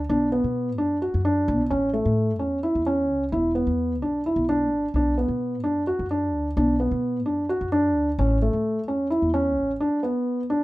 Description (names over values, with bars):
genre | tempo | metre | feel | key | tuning
contemporary instrumental, chamber music in an uneven meter | 259 BPM (eighths) | 7/8 | straight | B minor | A4 = 439 Hz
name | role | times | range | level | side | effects
upright bass | bass | 0.0-9.8 s | E1 to B2 | -27 LUFS | equal | none
felt-muted upright piano | arpeggios | 0.1-10.6 s | A3 to F#4 | -22 LUFS | equal | none
room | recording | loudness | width
moderate studio reverb, RT60 0.6 s | none | -21 LUFS | side -18 dB against mid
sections
0.0-10.6 A section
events
none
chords
0.0 Bm; 1.7 A; 3.3 E; 4.9 Bm; 8.2 A; 9.8 Bm